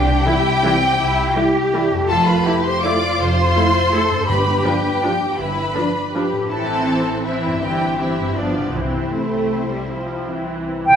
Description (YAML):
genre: classical, orchestral ballroom waltz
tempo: 162 BPM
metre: 3/4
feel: uneven beats, rubato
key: C major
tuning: A4 = 440 Hz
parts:
  - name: warm symphonic violin section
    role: melody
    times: 0.0-10.7 s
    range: C5 to D6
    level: -23 LUFS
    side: left 2 dB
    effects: none
  - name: rich symphonic violin section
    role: second line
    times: 0.0-10.6 s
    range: C4 to D5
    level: -24 LUFS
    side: left 2 dB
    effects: none
  - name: concert harp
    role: arpeggios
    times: 0.0-11.0 s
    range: F2 to A4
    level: -28 LUFS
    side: left 4 dB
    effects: none
  - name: rich symphonic double bass section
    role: bass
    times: 0.0-10.8 s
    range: F1 to C2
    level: -25 LUFS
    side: right 1 dB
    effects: none
  - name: warm symphonic cello section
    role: bass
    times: 0.0-10.8 s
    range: C4 to B4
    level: -24 LUFS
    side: right 2 dB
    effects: none
  - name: timpani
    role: percussion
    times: 0.0-0.4, 4.3-4.8, 8.7-9.3 s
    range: G2 to C3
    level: -29 LUFS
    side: equal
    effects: none
  - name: rich symphonic viola section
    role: accompaniment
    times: 0.3-11.0 s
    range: E3 to E4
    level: -24 LUFS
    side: right 1 dB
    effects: none
  - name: mellow French horn section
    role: sustained chords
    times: 0.3-10.8 s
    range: E3 to E4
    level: -26 LUFS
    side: left 1 dB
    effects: none
  - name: bright silver concert flute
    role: second line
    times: 10.9-11.0 s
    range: G5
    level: -8 LUFS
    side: right 2 dB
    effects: none
room: wet recital hall reverb, RT60 1.5 s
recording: recorded in a church or concert hall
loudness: -16 LUFS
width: side -8 dB against mid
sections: 0.0-11.0 A section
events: none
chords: 0.0 C; 2.1 Fmaj7; 4.3 G7; 6.5 Am; 7.6 C/G; 8.4 G7; 8.7 C